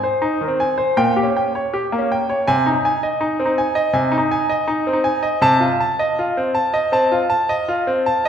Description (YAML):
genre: classical, baroque-style suite movement for grand piano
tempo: 80 BPM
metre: 4/4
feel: rubato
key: unclear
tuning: A4 = 440 Hz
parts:
  - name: bright grand piano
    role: solo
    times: 0.0-8.3 s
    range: Bb2 to A5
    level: -16 LUFS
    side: equal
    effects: none
room: wet concert hall reverb, RT60 1.8 s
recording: recorded in a church or concert hall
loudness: -16 LUFS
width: side -8 dB against mid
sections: 0.0-8.3 A section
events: none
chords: 0.0 Ab; 1.0 Gdim/Bb; 2.5 Ab/C; 5.4 F7/C